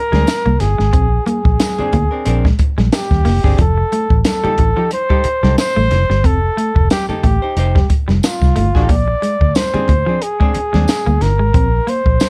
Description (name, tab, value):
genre	funk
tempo	90 BPM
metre	4/4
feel	swing 56% on 16ths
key	unclear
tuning	A4 = 441 Hz
part	breathy trumpet	melody	0.0-12.3 s	F4 to D5	-21 LUFS	equal	none
part	hollow-body jazz guitar	accompaniment	0.1-10.9 s	C4 to C5	-25 LUFS	equal	none
part	clean electric guitar	riff	0.1-12.1 s	F3 to C4	-24 LUFS	equal	none
part	vintage muted fingered electric bass	bass	0.1-12.2 s	F1 to Eb2	-18 LUFS	equal	none
part	compact cocktail drum kit	drums	0.1-12.3 s	hi-hat, kick drum, snare drum	-18 LUFS	equal	none
part	congas	percussion	0.1-12.3 s	none	-27 LUFS	equal	none
part	tambourine	percussion	0.3-12.3 s	none	-32 LUFS	equal	none
room	little or no reverb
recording	dark, warm production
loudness	-15 LUFS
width	mono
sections	0.0-12.3 A section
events	none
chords	0.0 Bb9; 3.6 F9; 8.9 Bb9